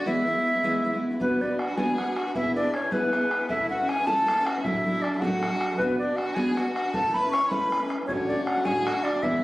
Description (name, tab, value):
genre	celtic folk, Celtic jig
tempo	105 BPM (dotted quarters)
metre	6/8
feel	straight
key	E mixolydian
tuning	A4 = 440 Hz
part	bright baroque flute	melody	0.0-9.4 s	B4 to C#6	-26 LUFS	equal	none
part	clear fiddle	second line	0.0-9.4 s	B3 to C#5	-34 LUFS	left 2 dB	none
part	fingerpicked steel-string acoustic guitar	accompaniment	0.0-9.4 s	D2 to B4	-28 LUFS	equal	none
part	bodhran	percussion	1.2-9.4 s	none	-33 LUFS	equal	none
room	moderate studio reverb, RT60 0.6 s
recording	recorded on a phone in the room, studio reverb, compression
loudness	-23 LUFS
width	side -18 dB against mid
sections	0.0-1.2 A section; 1.2-9.4 A section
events	none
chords	0.1 E; 1.2 Bm; 2.4 E/B; 3.5 Aadd9; 4.7 D; 5.8 Bm; 6.9 Aadd9; 8.1 D